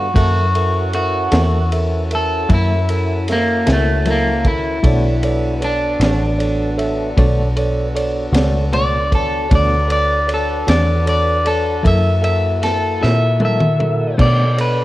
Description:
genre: slow blues.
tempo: 51 BPM (dotted quarters).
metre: 12/8.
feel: straight.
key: B minor.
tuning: A4 = 437 Hz.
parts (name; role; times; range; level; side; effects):
electric guitar at the edge of break-up; melody; 0.0-14.8 s; A3 to E5; -19 LUFS; left 1 dB; spring reverb.
bright tine electric piano; accompaniment; 0.0-14.8 s; A4 to E5; -23 LUFS; right 2 dB; none.
tonewheel organ; sustained chords; 0.0-14.8 s; G3 to C5; -28 LUFS; equal; slow rotary speaker, overdrive.
vintage muted fingered electric bass; bass; 0.0-14.8 s; A1 to B2; -18 LUFS; equal; none.
clean electric guitar; accompaniment; 0.1-14.4 s; B2 to A4; -23 LUFS; left 2 dB; tremolo.
crunchy breakbeat drum kit; drums; 0.2-14.8 s; crash cymbal, kick drum, ride cymbal, snare drum, toms; -21 LUFS; equal; none.
room: small room ambience.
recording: none.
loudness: -14 LUFS.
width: side -16 dB against mid.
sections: 0.0-14.2 A section.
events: clean electric guitar solo 0.0-14.2; drum fill 13.0-14.2.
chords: 0.2 F#7#9; 4.8 Bm7; 11.9 F#7#9; 14.2 Bm7.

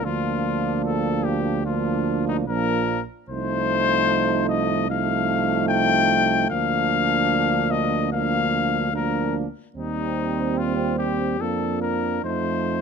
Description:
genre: classical, brass quintet.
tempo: 74 BPM.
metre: 4/4.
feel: rubato.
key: Bb major.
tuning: A4 = 440 Hz.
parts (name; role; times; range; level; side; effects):
clear trumpet; melody; 0.0-12.8 s; Eb4 to G5; -24 LUFS; left 8 dB; none.
dark flugelhorn; second line; 0.0-12.8 s; C4 to Eb4; -29 LUFS; right 10 dB; none.
clear trombone; accompaniment; 0.0-12.8 s; F3 to G3; -30 LUFS; right 8 dB; none.
warm French horn; accompaniment; 0.0-12.8 s; A3 to C4; -28 LUFS; left 2 dB; none.
mellow tuba; bass; 0.0-12.8 s; Bb1 to F2; -27 LUFS; right 5 dB; none.
room: light reverb.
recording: close, detailed microphones.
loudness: -20 LUFS.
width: side -6 dB against mid.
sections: 0.0-12.8 A section.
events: none.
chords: 0.0 Bb/D; 3.3 F7/C; 6.5 Bb/D; 9.8 Cm/Eb; 11.4 Bb/F; 12.2 F7.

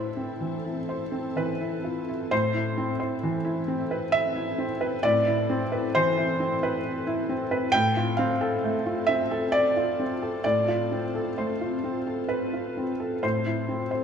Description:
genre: neoclassical piano and strings.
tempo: 66 BPM.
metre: 3/4.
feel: rubato.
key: A minor.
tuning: A4 = 441 Hz.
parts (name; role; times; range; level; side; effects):
felt-muted upright piano; accompaniment; 0.0-14.0 s; A2 to G5; -25 LUFS; equal; none.
ethereal airy pad; sustained chords; 0.0-14.0 s; C4 to A4; -33 LUFS; left 2 dB; ensemble chorus, built-in reverb.
room: wet scoring stage reverb, RT60 2.1 s.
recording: faint mains hum.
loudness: -24 LUFS.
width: side -7 dB against mid.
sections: 0.0-2.3 A section; 2.3-14.0 B section.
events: none.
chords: 0.0 Am; 2.3 Amadd9; 7.7 F/A; 13.2 Am.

